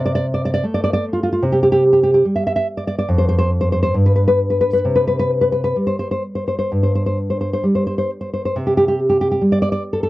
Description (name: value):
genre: romantic piece for solo classical guitar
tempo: 63-77 BPM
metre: 4/4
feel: rubato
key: unclear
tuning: A4 = 444 Hz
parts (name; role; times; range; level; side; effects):
- nylon-string guitar; solo; 0.0-10.1 s; F2 to E5; -15 LUFS; equal; none
room: light reverb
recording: dry, close 1970s-style studio recording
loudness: -15 LUFS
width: side -17 dB against mid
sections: 0.0-8.5 A section; 8.5-10.1 A section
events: none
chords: 0.0 F6/C; 1.4 C5; 3.1 N.C.; 4.8 C5